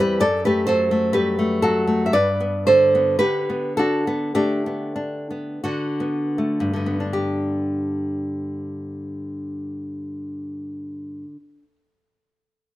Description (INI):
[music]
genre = romantic piece for solo classical guitar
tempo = 38-65 BPM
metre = 3/4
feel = rubato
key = G major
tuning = A4 = 440 Hz
[part]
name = nylon-string guitar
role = solo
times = 0.0-11.8 s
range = E2 to E5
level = -20 LUFS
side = equal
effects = none
[sound]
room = little or no reverb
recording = recorded outdoors, with no room sound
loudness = -19 LUFS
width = side -15 dB against mid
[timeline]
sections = 0.0-7.1 A section; 7.1-11.6 B section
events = slowing down 0.0-7.1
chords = 0.2 Am13/F#; 2.1 G; 3.2 G/D; 5.6 D6; 7.1 G